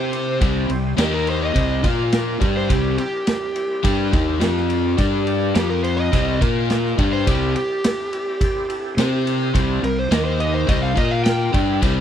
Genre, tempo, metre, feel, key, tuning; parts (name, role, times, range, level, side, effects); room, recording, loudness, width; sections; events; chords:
blues rock power trio and southern rock; 105 BPM; 4/4; straight; C mixolydian; A4 = 440 Hz
overdriven slide guitar; melody; 0.0-11.8 s; G4 to G5; -25 LUFS; right 1 dB
overdriven tonewheel organ; sustained chords; 0.0-12.0 s; F3 to F5; -33 LUFS; right 2 dB; slow rotary speaker, chorus vibrato
overdriven electric guitar; riff; 0.0-12.0 s; C3 to C5; -21 LUFS; left 2 dB
fuzz fingered electric bass; bass; 0.0-12.0 s; C2 to C3; -23 LUFS; equal; overdrive
vintage drum kit; drums; 0.1-12.0 s; kick drum, ride cymbal, snare drum; -23 LUFS; equal
small room ambience; -17 LUFS; side -9 dB against mid
0.0-12.0 A section
electric slide guitar solo 0.0-12.0
0.0 C; 1.0 Eb5; 1.6 C; 1.8 Bb5; 2.4 C; 4.4 F5; 5.0 G5; 5.6 F5; 6.1 C; 6.4 Bb5; 7.0 C; 10.1 Eb5; 10.7 C; 11.0 Bb5